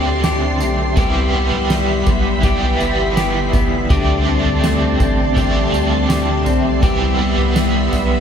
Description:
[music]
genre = dream pop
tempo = 82 BPM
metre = 4/4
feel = straight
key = unclear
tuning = A4 = 438 Hz
[part]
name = crunchy overdriven guitar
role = accompaniment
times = 0.0-8.2 s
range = C3 to G4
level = -21 LUFS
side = right 3 dB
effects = tremolo, ensemble chorus
[part]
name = ensemble organ-string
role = sustained chords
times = 0.0-8.2 s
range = G3 to C6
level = -21 LUFS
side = right 1 dB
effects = ensemble chorus
[part]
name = clean electric guitar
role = arpeggios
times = 0.0-8.2 s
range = D3 to G4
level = -21 LUFS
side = left 5 dB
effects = analog chorus, ping-pong delay
[part]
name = round analog bass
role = bass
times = 0.0-8.2 s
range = G1 to D2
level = -21 LUFS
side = equal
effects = none
[part]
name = soft-mallet drum kit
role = drums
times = 0.2-8.1 s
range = kick drum, snare drum, tambourine, toms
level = -20 LUFS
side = equal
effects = none
[sound]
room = moderate concert hall reverb, RT60 2.0 s, small room ambience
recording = none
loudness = -14 LUFS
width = side -8 dB against mid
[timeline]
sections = 0.0-8.2 A section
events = none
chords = 0.0 D7sus4; 1.0 Cmaj7; 3.9 D7sus4; 6.8 Cmaj7

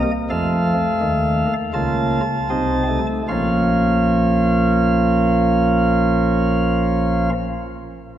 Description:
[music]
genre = classical, baroque-style 4-part fugue for pipe organ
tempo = 37-44 BPM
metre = 4/4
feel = straight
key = Bb minor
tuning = A4 = 435 Hz
[part]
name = chamber organ, sparkling flutes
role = solo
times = 0.0-7.3 s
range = Bb1 to A5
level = -16 LUFS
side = equal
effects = none
[sound]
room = wet church reverb, RT60 2.8 s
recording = worn, warbling old tape, cassette tape, warbly pitch drift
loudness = -16 LUFS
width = side -10 dB against mid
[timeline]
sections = 0.0-3.3 A section; 3.3-8.2 B section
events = slowing down 0.0-3.3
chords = 0.3 F7; 3.3 Bbm

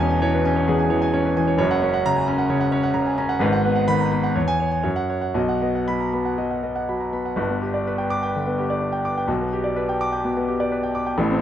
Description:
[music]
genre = classical, virtuoso piano study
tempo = 114-133 BPM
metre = 4/4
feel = rubato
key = B major, G major from 7.4 s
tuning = A4 = 440 Hz
[part]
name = warm grand piano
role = solo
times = 0.0-11.4 s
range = E1 to D6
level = -19 LUFS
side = equal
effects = none
[sound]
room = light reverb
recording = none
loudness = -19 LUFS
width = side -10 dB against mid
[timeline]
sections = 0.0-7.4 A section; 7.4-11.4 B section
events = none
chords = 0.0 C#m/E; 1.6 F#; 3.4 G#m7; 4.4 C#m/E; 4.9 F#5; 5.4 B; 7.4 G; 9.3 G/B

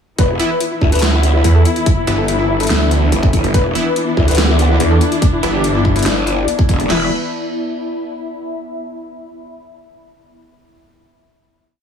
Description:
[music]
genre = heavy wobble dubstep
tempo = 143 BPM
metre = 4/4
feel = half-time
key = E minor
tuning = A4 = 440 Hz
[part]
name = felt-muted upright piano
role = melody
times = 0.2-7.1 s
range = E4 to B4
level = -21 LUFS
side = left 2 dB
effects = digital delay
[part]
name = rich studio string section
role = sustained chords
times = 0.2-7.1 s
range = E3 to B5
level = -22 LUFS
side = left 2 dB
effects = sidechain pumping, low-pass filter
[part]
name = growl bass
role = bass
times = 0.2-7.1 s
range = E1 to D2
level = -15 LUFS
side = right 1 dB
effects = chorus, overdrive
[part]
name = dubstep drum kit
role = drums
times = 0.2-7.0 s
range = crash cymbal, kick drum, snare drum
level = -16 LUFS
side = equal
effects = small room ambience
[part]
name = dubstep drum kit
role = drums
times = 0.2-6.9 s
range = hi-hat, snare drum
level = -21 LUFS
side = equal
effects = small room ambience
[part]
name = ethereal airy pad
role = texture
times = 1.6-8.5 s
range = B3 to B5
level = -24 LUFS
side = left 2 dB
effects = ensemble chorus, built-in reverb, sidechain pumping
[part]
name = supersaw stab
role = stabs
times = 0.4-7.1 s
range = E3 to E4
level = -23 LUFS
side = right 1 dB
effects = digital delay
[part]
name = snarling distorted saw bass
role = bass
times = 1.4-6.0 s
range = G1 to E2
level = -14 LUFS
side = right 1 dB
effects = distortion, overdrive
[sound]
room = light reverb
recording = none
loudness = -12 LUFS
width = side -7 dB against mid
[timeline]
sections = 0.2-6.9 drop; 6.9-8.6 final chord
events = drop 0.2-6.9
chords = 0.2 E5

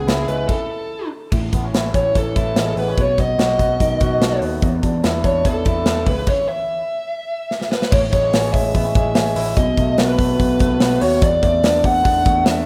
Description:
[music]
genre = jangly indie pop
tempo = 145 BPM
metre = 4/4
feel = straight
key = A major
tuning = A4 = 443 Hz
[part]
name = bluesy overdriven lead guitar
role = melody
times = 0.0-12.7 s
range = G#4 to F#5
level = -22 LUFS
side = equal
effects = distortion
[part]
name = electric guitar through a small old amp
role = arpeggios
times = 0.0-12.7 s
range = E2 to F#4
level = -24 LUFS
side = equal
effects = lush chorus
[part]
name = vintage muted picked electric bass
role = bass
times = 0.0-12.6 s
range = A1 to E2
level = -26 LUFS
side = equal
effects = none
[part]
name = big rock drum kit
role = drums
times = 0.1-12.6 s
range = crash cymbal, hi-hat, kick drum, snare drum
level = -22 LUFS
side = equal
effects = none
[sound]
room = light reverb, studio ambience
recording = rough home demo mix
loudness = -18 LUFS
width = mono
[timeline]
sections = 0.0-1.3 A section; 1.3-7.9 B section; 7.9-12.7 C section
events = stop 0.5-1.3, 6.3-7.9; drum fill 7.5-7.9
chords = 0.5 N.C.; 1.3 Amaj7; 3.0 B7; 4.6 E7sus4; 6.1 C#m; 7.9 Amaj7; 9.6 B7; 11.2 E7sus4

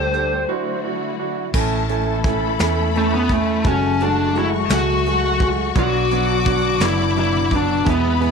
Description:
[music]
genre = six-eight pop ballad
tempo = 57 BPM (dotted quarters)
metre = 6/8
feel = straight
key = A major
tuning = A4 = 438 Hz
[part]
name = bluesy overdriven lead guitar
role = melody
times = 0.0-8.3 s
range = A3 to C5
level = -20 LUFS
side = left 1 dB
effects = distortion
[part]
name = clear baby grand piano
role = accompaniment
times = 0.0-8.3 s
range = F#3 to A4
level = -23 LUFS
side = right 14 dB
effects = none
[part]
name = warm studio string section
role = sustained chords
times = 0.0-8.3 s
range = G#2 to A4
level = -26 LUFS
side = left 14 dB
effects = none
[part]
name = vintage muted fingered electric bass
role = bass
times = 0.0-8.3 s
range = F#1 to E2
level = -23 LUFS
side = equal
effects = none
[part]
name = soft brush drum kit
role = drums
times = 0.1-8.3 s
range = crash cymbal, hi-hat, kick drum, snare drum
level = -23 LUFS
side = equal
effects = none
[part]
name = warm studio violin section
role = second line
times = 1.5-8.3 s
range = A5 to D6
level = -26 LUFS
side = left 12 dB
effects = none
[sound]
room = light reverb, small room ambience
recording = 1960s-style stereo with parts hard left and right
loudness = -16 LUFS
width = side -5 dB against mid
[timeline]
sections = 0.0-1.5 A section; 1.5-8.3 B section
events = break 0.5-1.5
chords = 0.5 Dadd9; 1.5 A; 3.7 F#madd9; 5.8 Bm

